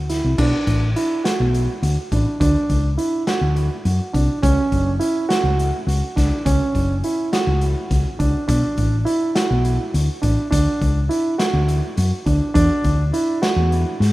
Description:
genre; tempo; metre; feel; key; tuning
progressive instrumental, band music in an uneven meter; 207 BPM (eighths); 7/8; straight; D major; A4 = 440 Hz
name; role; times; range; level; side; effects
hollow-body short-scale fingered electric bass; bass; 0.0-14.1 s; F#1 to G#2; -18 LUFS; left 1 dB; none
dark concert grand piano; arpeggios; 0.1-13.9 s; C#4 to F#4; -21 LUFS; right 2 dB; tape echo
raw garage drum kit; drums; 0.1-14.1 s; crash cymbal, hi-hat, kick drum, snare drum; -24 LUFS; left 1 dB; none
room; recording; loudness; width
light reverb, studio ambience; rough home demo mix; -17 LUFS; side -18 dB against mid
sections
0.4-14.1 A section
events
none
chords
0.4 Bm7; 2.4 Dmaj7; 4.4 Dmaj7/F# (rootless); 8.5 Bm7; 10.5 Dmaj7; 12.6 E7sus2

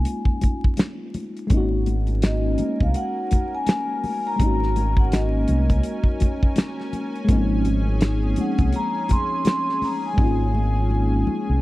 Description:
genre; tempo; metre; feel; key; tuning
R&B, neo-soul; 83 BPM; 4/4; swing 60% on 16ths; unclear; A4 = 440 Hz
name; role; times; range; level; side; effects
vibraphone with soft mallets; melody; 0.0-11.6 s; Eb5 to C6; -28 LUFS; equal; slapback echo
mellow FM electric piano; accompaniment; 0.0-11.6 s; F3 to Gb4; -26 LUFS; left 1 dB; chorus, phaser
deep dub fingered electric bass; bass; 0.0-11.6 s; Ab1 to C2; -21 LUFS; equal; none
damped 70s drum kit; drums; 0.1-10.4 s; finger snaps, hi-hat, kick drum, snare drum; -20 LUFS; equal; none
congas; percussion; 0.4-11.5 s; none; -32 LUFS; left 3 dB; none
lush unison pad; sustained chords; 2.0-11.6 s; Db4 to Ab5; -32 LUFS; left 2 dB; chorus
room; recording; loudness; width
small room ambience; dry, close 1970s-style studio recording, vinyl crackle; -19 LUFS; side -17 dB against mid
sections
0.0-1.5 A section; 1.5-11.6 A section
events
drum fill 10.2-11.6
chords
0.0 Absus4; 1.5 Ab9sus4

